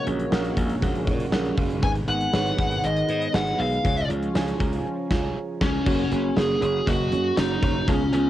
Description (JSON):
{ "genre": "1980s-style pop", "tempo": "119 BPM", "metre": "4/4", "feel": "straight", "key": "F# major", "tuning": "A4 = 440 Hz", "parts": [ { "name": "fuzz lead guitar", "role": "melody", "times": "0.0-8.3 s", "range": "C#4 to G#5", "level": "-26 LUFS", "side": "left 1 dB", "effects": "distortion, cassette tape, analog delay" }, { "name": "mellow FM electric piano", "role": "accompaniment", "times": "0.0-8.3 s", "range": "G#2 to C#6", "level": "-29 LUFS", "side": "right 6 dB", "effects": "chorus, cassette tape" }, { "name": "warm analog pad", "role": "sustained chords", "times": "0.0-5.8 s", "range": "C#3 to F#4", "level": "-32 LUFS", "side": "left 1 dB", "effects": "chorus, cassette tape" }, { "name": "glassy slap bass", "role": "bass", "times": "0.1-8.3 s", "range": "F#1 to A#2", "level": "-28 LUFS", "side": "equal", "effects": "none" }, { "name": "gated 80s drum kit", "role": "drums", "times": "0.1-8.2 s", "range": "crash cymbal, hi-hat, kick drum, snare drum, tambourine", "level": "-26 LUFS", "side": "equal", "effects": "cassette tape" }, { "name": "funky polysynth comp", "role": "stabs", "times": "5.9-8.3 s", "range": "A#3 to G#4", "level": "-32 LUFS", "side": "equal", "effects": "chorus, cassette tape, analog delay" } ], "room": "moderate booth ambience, RT60 0.2 s", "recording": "home recording on cassette", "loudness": "-21 LUFS", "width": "side -13 dB against mid", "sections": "0.0-5.9 A section; 5.9-8.3 B section", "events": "band accent 4.9-5.9", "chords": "0.0 F#add9/A#; 1.8 G#m; 3.8 C#; 5.9 F#add9", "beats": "0.32 0.82 1.32 | 1.83 2.33 2.84 3.34 | 3.85 4.35 4.86 5.36 | 5.86 6.37 6.87 7.38 | 7.88" }